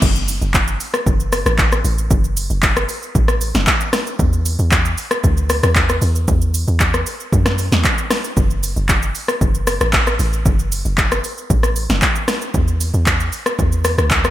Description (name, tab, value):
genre	amapiano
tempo	115 BPM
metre	4/4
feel	straight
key	F# minor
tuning	A4 = 439 Hz
part	deep log drum bass	bass	0.0-14.3 s	F#1 to F#2	-18 LUFS	equal	none
part	deep house drum kit	drums	0.0-14.3 s	crash cymbal, handclaps, hi-hat, kick drum, rim click, shaker, snare drum	-16 LUFS	equal	gated reverb
room	light reverb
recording	bright 1980s-style digital production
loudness	-14 LUFS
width	side -13 dB against mid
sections	0.0-14.3 A section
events	drop 0.0-14.3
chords	none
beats	| 0.02 0.54 1.06 1.59 | 2.11 2.63 3.15 3.67 | 4.20 4.72 5.24 5.76 | 6.28 6.80 7.33 7.85 | 8.37 8.89 9.41 9.93 | 10.46 10.98 11.50 12.02 | 12.54 13.06 13.59 14.11